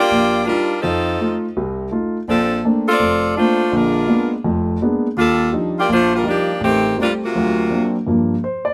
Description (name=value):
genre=jazz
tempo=166 BPM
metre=4/4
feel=swing 64% on 8ths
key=unclear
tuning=A4 = 441 Hz
part: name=bright saxophone section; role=melody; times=0.0-7.9 s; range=C3 to D5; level=-20 LUFS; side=equal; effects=plate reverb
part: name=warm grand piano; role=accompaniment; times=0.1-8.7 s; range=F1 to D5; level=-21 LUFS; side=equal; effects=none
room=moderate booth ambience, RT60 0.2 s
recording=none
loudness=-18 LUFS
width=mono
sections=0.0-8.1 A section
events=none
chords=0.0 Ebmaj9; 0.8 F7; 2.3 Bbmaj9; 3.7 Bb7b9; 5.2 Ebmaj9; 6.6 Am7b5; 7.3 D7alt; 8.1 Gm7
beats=0.10 0.46 | 0.83 1.19 1.55 1.91 | 2.27 2.63 3.00 3.36 | 3.72 4.08 4.44 4.80 | 5.17 5.53 5.89 6.25 | 6.61 6.97 7.34 7.70 | 8.06 8.42